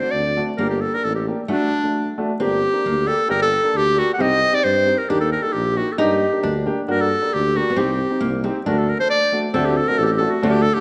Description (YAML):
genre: klezmer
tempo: 134 BPM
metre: 2/4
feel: straight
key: unclear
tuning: A4 = 440 Hz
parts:
  - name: clear clarinet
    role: melody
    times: 0.0-10.8 s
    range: D4 to F#5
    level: -22 LUFS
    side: equal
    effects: none
  - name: nylon-string guitar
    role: second line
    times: 0.0-10.8 s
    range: A3 to Eb4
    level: -29 LUFS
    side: equal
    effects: none
  - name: warm upright piano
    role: accompaniment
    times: 0.0-10.8 s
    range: A3 to A4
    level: -26 LUFS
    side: equal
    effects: none
  - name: warm tuba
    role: bass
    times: 0.1-10.7 s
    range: G1 to G2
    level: -27 LUFS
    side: equal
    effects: none
room: wet recital hall reverb, RT60 1.4 s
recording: nothing above 11.0 kHz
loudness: -19 LUFS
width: mono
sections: 0.0-2.4 A section; 2.4-9.5 B section; 9.5-10.8 A section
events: speeding up 0.0-10.8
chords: 0.0 D; 0.6 Gm; 1.5 D; 2.4 Gm; 4.2 Cm; 5.1 Eb; 6.0 Gm; 7.8 Cm; 8.7 D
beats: 0.14 | 0.59 1.05 | 1.50 1.95 | 2.40 2.85 | 3.29 3.74 | 4.19 4.64 | 5.09 5.54 | 5.98 6.43 | 6.88 7.32 | 7.77 8.22 | 8.66 9.10 | 9.55 9.99 | 10.43